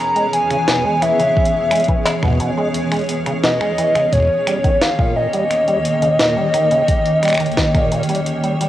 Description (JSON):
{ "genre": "IDM", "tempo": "87 BPM", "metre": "4/4", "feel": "straight", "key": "unclear", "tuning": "A4 = 440 Hz", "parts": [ { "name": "warbly nostalgic lead", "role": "melody", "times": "0.0-8.7 s", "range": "Db5 to Bb5", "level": "-17 LUFS", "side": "equal", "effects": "chorus, cassette tape, analog delay" }, { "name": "granular cloud pad", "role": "sustained chords", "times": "0.0-8.7 s", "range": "Eb3 to G5", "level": "-21 LUFS", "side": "equal", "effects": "built-in reverb, sidechain pumping, cassette tape" }, { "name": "bubbling stepped-filter texture", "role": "texture", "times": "0.0-8.7 s", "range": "Db4 to Ab4", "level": "-32 LUFS", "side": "left 1 dB", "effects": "chorus, built-in reverb, cassette tape" }, { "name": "deep acid bass", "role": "arpeggios", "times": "0.2-8.7 s", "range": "Bb2 to G#3", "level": "-23 LUFS", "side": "right 1 dB", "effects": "wide subtle chorus, cassette tape, analog delay" }, { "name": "jungle sampler-style drum kit", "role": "drums", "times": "0.2-8.7 s", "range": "finger snaps, hi-hat, snare drum", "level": "-22 LUFS", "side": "equal", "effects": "small room ambience, cassette tape" }, { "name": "electronic kick drum", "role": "drums", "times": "1.4-7.9 s", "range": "none", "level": "-17 LUFS", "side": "equal", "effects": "small room ambience, cassette tape" } ], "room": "light reverb", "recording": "home recording on cassette", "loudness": "-14 LUFS", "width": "side -13 dB against mid", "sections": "0.0-8.7 A section", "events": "kick drops out 8.3-8.7", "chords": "0.0 E6; 4.1 Eb7", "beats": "0.68 | 1.36 2.06 2.75 3.43 | 4.12 4.81 5.50 6.19 | 6.88 7.57 8.26" }